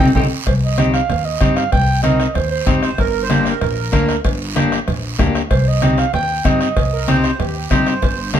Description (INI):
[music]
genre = latin, cumbia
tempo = 191 BPM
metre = 4/4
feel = straight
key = C minor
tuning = A4 = 440 Hz
[part]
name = warm clarinet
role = melody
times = 0.0-2.8, 5.5-7.2 s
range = C5 to G5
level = -20 LUFS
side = right 5 dB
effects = none
[part]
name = electric guitar at the edge of break-up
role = accompaniment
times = 0.0-8.4 s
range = Bb3 to Bb4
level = -19 LUFS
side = left 4 dB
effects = none
[part]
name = upright bass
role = bass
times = 0.0-8.4 s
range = G1 to G2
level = -20 LUFS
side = equal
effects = none
[part]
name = congas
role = percussion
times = 0.0-8.4 s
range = none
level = -22 LUFS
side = right 3 dB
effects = none
[part]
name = timbales and cowbell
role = percussion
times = 0.1-8.4 s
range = none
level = -28 LUFS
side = right 4 dB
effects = none
[part]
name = bombo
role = percussion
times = 0.2-8.4 s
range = none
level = -21 LUFS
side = left 1 dB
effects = none
[part]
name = guiro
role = percussion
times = 0.2-8.4 s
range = none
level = -30 LUFS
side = right 6 dB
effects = none
[part]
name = accordion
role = second line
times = 2.8-4.2, 6.9-8.3 s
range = G4 to C5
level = -23 LUFS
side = right 8 dB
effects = light tremolo tuning
[sound]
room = wet studio reverb, RT60 0.7 s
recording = band playing live in one room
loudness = -14 LUFS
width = side -10 dB against mid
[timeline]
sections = 0.5-8.4 A section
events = drum fill 0.0-0.5; band accent 0.0-0.5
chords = 0.5 Cm; 3.0 Gm; 5.5 Cm